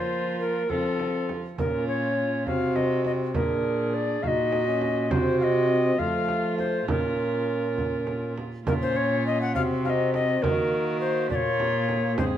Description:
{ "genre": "classical, renaissance-style consort dance", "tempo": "68 BPM (dotted quarters)", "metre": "6/8", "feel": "straight", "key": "Bb minor", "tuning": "A4 = 440 Hz", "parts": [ { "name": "tenor recorder", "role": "melody", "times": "0.0-12.2 s", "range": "A4 to Gb5", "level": "-27 LUFS", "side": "left 2 dB", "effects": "none" }, { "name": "warm viola", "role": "second line", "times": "0.0-12.4 s", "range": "F4 to Ab4", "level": "-31 LUFS", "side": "right 4 dB", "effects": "none" }, { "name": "warm trombone", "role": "accompaniment", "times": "0.0-12.4 s", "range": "A3 to Eb4", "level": "-30 LUFS", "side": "left 2 dB", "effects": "none" }, { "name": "rich cello", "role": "bass", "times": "0.0-12.4 s", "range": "Ab2 to F3", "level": "-30 LUFS", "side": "right 1 dB", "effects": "none" }, { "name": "frame drum", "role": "percussion", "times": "0.7-12.4 s", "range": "none", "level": "-32 LUFS", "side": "right 2 dB", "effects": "none" } ], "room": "wet stone room reverb, RT60 1.3 s", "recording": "none", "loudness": "-23 LUFS", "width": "side -10 dB against mid", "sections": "0.0-8.7 A section; 8.7-12.4 A section", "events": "none", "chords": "0.0 Fsus4; 0.7 F; 1.6 Bbm; 2.5 Cdim; 3.4 Bb7; 4.2 Ebm/Bb; 5.1 Cdim; 6.0 F; 6.9 Bbm; 9.6 Cdim; 10.4 Ebm; 11.3 Bbm" }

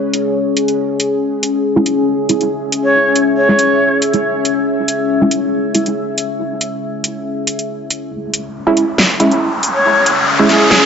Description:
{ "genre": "deep dubstep", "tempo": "139 BPM", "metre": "4/4", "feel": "swing 54% on 16ths, half-time", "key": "C# minor", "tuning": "A4 = 442 Hz", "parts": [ { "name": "deep dark ambient pad", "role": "sustained chords", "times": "0.0-10.9 s", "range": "C#4 to E5", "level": "-17 LUFS", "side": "left 2 dB", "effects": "chorus, built-in reverb" }, { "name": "dubstep drum kit", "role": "drums", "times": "0.1-10.8 s", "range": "hi-hat, snare drum", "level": "-15 LUFS", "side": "equal", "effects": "high-pass filter on hats, low-pass filter on hats, high-pass filter on snare, low-pass filter on snare" }, { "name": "filtered dub chord stab", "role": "stabs", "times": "1.8-5.9, 8.7-10.9 s", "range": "G#3 to E4", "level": "-16 LUFS", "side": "right 2 dB", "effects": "wide subtle chorus, dub echo" }, { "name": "bright reedy shakuhachi", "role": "melody", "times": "2.8-4.0, 9.7-10.9 s", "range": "G#4 to C#5", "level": "-15 LUFS", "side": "equal", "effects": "dub echo" }, { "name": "deep soft wobble bass", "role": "bass", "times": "8.1-10.9 s", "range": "G#1 to C#2", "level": "-33 LUFS", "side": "equal", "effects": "chorus, high-pass filter" }, { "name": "riser", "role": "sound effects", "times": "9.0-10.9 s", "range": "none", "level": "-16 LUFS", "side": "left 2 dB", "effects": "none" } ], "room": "wet echo chamber reverb, RT60 1.8 s, digital ambience", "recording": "dark, warm production, nothing above 7.8 kHz", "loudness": "-12 LUFS", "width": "side -7 dB against mid", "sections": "0.0-8.1 A section; 8.1-10.9 B section", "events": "build-up 8.1-10.9; riser 9.0-10.9", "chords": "0.0 C#m" }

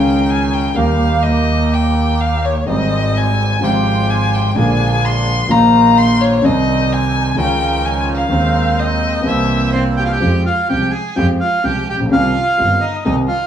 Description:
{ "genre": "tango", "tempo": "127 BPM", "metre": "4/4", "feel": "rubato", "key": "Ab major, F minor from 10.2 s", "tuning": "A4 = 440 Hz", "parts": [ { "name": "warm violin", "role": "second line", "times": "0.0-13.5 s", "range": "C4 to C6", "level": "-19 LUFS", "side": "left 4 dB", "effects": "none" }, { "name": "warm grand piano", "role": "accompaniment", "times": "0.0-13.3 s", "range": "G1 to Ab4", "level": "-17 LUFS", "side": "equal", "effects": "none" }, { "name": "bandoneon", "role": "stabs", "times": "0.0-10.2 s", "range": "F3 to Ab4", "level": "-23 LUFS", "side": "right 5 dB", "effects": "none" }, { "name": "rich double bass", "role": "bass", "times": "0.0-13.3 s", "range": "G1 to F2", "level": "-19 LUFS", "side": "right 2 dB", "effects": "none" }, { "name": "bandoneon", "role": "melody", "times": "9.7-13.5 s", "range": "C5 to Ab5", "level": "-18 LUFS", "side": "right 2 dB", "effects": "none" } ], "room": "moderate large studio reverb, RT60 1.1 s", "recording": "small room ambience", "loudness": "-13 LUFS", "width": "side -9 dB against mid", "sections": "0.0-10.2 A section; 10.2-13.5 B section", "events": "violin solo 0.0-10.2", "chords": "0.0 Dbsus2; 0.8 Eb; 2.7 Abmaj7; 3.6 Fmadd9/Ab; 4.6 Bb7; 5.5 Ebsus2/Bb; 6.4 Cm; 7.4 Dbadd9; 8.3 Ab/Eb; 9.3 C7; 10.2 Fmadd9; 12.1 Cm" }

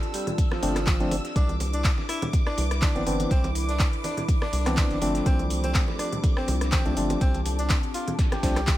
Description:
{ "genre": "deep house", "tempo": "123 BPM", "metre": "4/4", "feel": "swing 54% on 16ths", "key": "C major", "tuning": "A4 = 440 Hz", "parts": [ { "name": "warbly tape-like pad", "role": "sustained chords", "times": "0.0-8.8 s", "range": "C4 to B4", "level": "-38 LUFS", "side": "left 2 dB", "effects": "chorus, built-in reverb, vintage 12-bit sampler grit, sidechain pumping" }, { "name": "deep house drum kit", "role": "drums", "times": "0.0-8.8 s", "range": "handclaps, hi-hat, rim click, snare drum", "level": "-32 LUFS", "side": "equal", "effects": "small room ambience" }, { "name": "string machine, violins", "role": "texture", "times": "0.0-8.8 s", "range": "D6 to E6", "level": "-38 LUFS", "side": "equal", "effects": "ensemble chorus, sidechain pumping" }, { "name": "warbly tape-like pad", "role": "texture", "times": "0.0-8.8 s", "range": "E4 to B5", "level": "-39 LUFS", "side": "equal", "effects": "chorus, built-in reverb, sidechain pumping" }, { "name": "breathy tenor saxophone", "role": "melody", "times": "0.1-8.8 s", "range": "F3 to G4", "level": "-33 LUFS", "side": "equal", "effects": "digital delay" }, { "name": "dusty soul sampler-style drum kit", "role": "drums", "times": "0.1-8.8 s", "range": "hi-hat, snare drum", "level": "-40 LUFS", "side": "equal", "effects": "sidechain pumping on hats, high-pass filter on hats, small room ambience, high-pass filter on snare, high-pass filter on room" }, { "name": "congas", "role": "percussion", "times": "0.3-8.8 s", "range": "none", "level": "-35 LUFS", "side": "right 1 dB", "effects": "overdrive, small room ambience" }, { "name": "electronic kick drum", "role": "drums", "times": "0.4-8.8 s", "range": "none", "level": "-24 LUFS", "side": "equal", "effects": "small room ambience" }, { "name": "percussive organ stab", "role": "stabs", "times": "0.6-8.6 s", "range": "E3 to D4", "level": "-29 LUFS", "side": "left 1 dB", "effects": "chorus" }, { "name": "rubbery square bass", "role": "bass", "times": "0.6-8.8 s", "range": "G1 to C2", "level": "-28 LUFS", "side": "equal", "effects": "sidechain pumping" } ], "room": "little or no reverb", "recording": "none", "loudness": "-22 LUFS", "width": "side -14 dB against mid", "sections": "0.0-8.8 A section", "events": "none", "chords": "0.0 Cmaj9; 5.3 F6" }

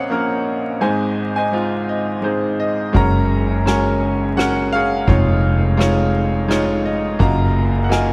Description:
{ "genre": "acoustic folk-pop ballad", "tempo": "85 BPM", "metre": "3/4", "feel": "straight", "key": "unclear", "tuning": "A4 = 440 Hz", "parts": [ { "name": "bright grand piano", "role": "melody", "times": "0.0-8.1 s", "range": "F1 to Bb5", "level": "-20 LUFS", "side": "equal", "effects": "none" }, { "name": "woody fretless electric bass", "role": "bass", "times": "2.9-8.1 s", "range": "F1 to Gb1", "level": "-21 LUFS", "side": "equal", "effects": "none" }, { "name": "soft-mallet drum kit", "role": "drums", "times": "2.9-8.1 s", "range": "kick drum, ride cymbal, rim click", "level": "-27 LUFS", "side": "equal", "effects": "none" } ], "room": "little or no reverb", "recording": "vinyl crackle", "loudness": "-18 LUFS", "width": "mono", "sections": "0.0-2.9 A section; 2.9-8.1 B section", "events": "none", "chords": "0.0 Bbmadd9; 0.8 Ab; 2.9 Gbadd9; 5.1 Dbadd9/F; 7.2 Ebmadd9/Gb" }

